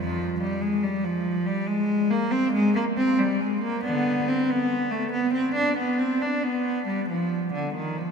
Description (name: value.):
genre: classical, baroque-style suite movement for unaccompanied cello.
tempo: 93 BPM (dotted quarters).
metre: 12/8.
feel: rubato.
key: unclear.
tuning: A4 = 439 Hz.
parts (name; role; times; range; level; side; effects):
rich cello; solo; 0.0-8.1 s; F2 to D4; -22 LUFS; equal; none.
room: wet cathedral reverb, RT60 6.0 s.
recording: in a vast, echoing space.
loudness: -22 LUFS.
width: side -6 dB against mid.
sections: 0.0-8.1 A section.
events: none.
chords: none.